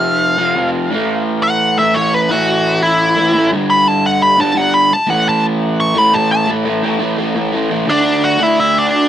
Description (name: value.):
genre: punk.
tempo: 172 BPM.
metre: 4/4.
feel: straight.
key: unclear.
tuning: A4 = 440 Hz.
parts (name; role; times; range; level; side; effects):
nasal lead guitar with a parked wah; melody; 0.0-9.1 s; D4 to C#6; -14 LUFS; equal; overdrive, cassette tape, tape echo.
crunchy overdriven guitar; riff; 0.0-9.1 s; F2 to D4; -16 LUFS; equal; cassette tape.
room: little or no reverb.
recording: home recording on cassette.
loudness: -12 LUFS.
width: side -10 dB against mid.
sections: 0.0-6.5 A section; 6.5-7.9 B section; 7.9-9.1 C section.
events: lead electric guitar solo 0.0-6.5.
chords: 0.0 F5; 0.9 A5; 3.5 G5; 5.1 A5; 7.9 D.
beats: 0.21 0.56 | 0.90 1.25 1.60 1.95 | 2.30 2.65 3.00 3.35 | 3.70 4.05 4.39 4.74 | 5.09 5.44 5.79 6.14 | 6.49 6.84 7.19 7.54 | 7.88 8.23 8.58 8.93.